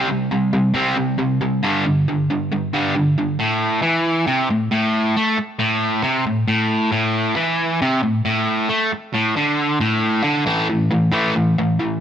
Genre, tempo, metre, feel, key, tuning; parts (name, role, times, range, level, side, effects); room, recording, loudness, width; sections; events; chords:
rock; 136 BPM; 4/4; straight; A4 = 440 Hz
distorted electric guitar; solo; 0.0-12.0 s; G2 to C4; -16 LUFS; equal; distortion
light reverb, digital ambience; -16 LUFS; side -9 dB against mid
0.0-3.4 A section; 3.4-10.5 B section; 10.5-12.0 C section
0.0 C5; 1.6 G5; 3.4 A5